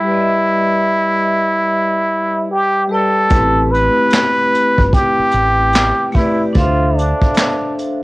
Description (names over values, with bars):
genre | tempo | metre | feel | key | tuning
lo-fi hip hop | 74 BPM | 4/4 | swing 64% on 16ths | A minor | A4 = 440 Hz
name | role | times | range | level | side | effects
trumpet with plunger mute | melody | 0.0-7.8 s | D4 to B4 | -14 LUFS | equal | low-pass filter
vibraphone with hard mallets | accompaniment | 0.0-8.0 s | G3 to G5 | -19 LUFS | left 1 dB | low-pass filter, cassette tape
deep dub fingered electric bass | bass | 3.3-7.1 s | G1 to D2 | -18 LUFS | equal | none
vintage brush drum kit | drums | 3.3-8.0 s | handclaps, hi-hat, kick drum, snare drum | -16 LUFS | equal | vintage 12-bit sampler grit, cassette tape
room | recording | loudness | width
light reverb | home recording on cassette | -12 LUFS | side -21 dB against mid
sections
0.0-3.3 A section; 3.3-8.0 B section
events
none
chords
0.1 G6; 3.3 Am9; 6.6 Dm7